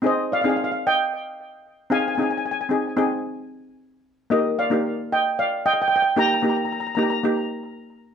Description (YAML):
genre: calypso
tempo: 112 BPM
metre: 4/4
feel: straight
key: Eb major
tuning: A4 = 440 Hz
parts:
  - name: steel pan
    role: accompaniment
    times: 0.0-7.9 s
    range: Bb3 to Ab4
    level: -23 LUFS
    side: equal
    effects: none
  - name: steel pan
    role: melody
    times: 0.1-7.2 s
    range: Bb4 to Bb5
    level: -22 LUFS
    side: equal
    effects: tape echo
room: wet studio reverb, RT60 0.6 s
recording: none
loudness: -20 LUFS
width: side -7 dB against mid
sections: 0.0-8.1 A section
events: none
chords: 0.0 Ab; 4.3 Eb